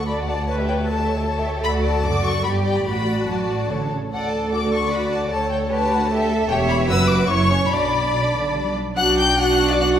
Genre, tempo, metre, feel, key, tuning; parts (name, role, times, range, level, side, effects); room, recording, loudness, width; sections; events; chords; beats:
quick classical-period movement for string orchestra; 149 BPM; 3/4; rubato; D major, B minor from 6.5 s; A4 = 440 Hz
rich chamber violin section; melody; 0.0-9.9 s; F#5 to G6; -24 LUFS; left 5 dB
warm studio violin section; second line; 0.0-10.0 s; C#4 to G5; -24 LUFS; left 1 dB
rich chamber viola section; accompaniment; 0.0-10.0 s; D4 to D5; -24 LUFS; right 2 dB
dark chamber cello section; bass; 0.0-10.0 s; D2 to F#4; -25 LUFS; right 2 dB
rich chamber double bass section; bass; 0.0-10.0 s; E1 to D2; -26 LUFS; right 1 dB
wet scoring stage reverb, RT60 1.5 s; recorded in a church or concert hall; -18 LUFS; side -9 dB against mid
0.0-9.0 A section; 9.0-10.0 B section
0.5 A7/D; 1.7 D; 2.5 G; 2.9 D/A; 3.7 A; 4.1 D; 5.3 A7/D; 6.5 C#dim/E; 6.9 Bm/F#; 7.3 F#5; 7.7 Bm
0.07 | 0.47 0.87 1.26 | 1.66 2.05 2.46 | 2.87 3.28 3.69 | 4.11 4.52 4.92 | 5.31 5.71 6.10 | 6.50 6.89 7.30 | 7.71 8.14 8.56 | 8.98 9.40 9.80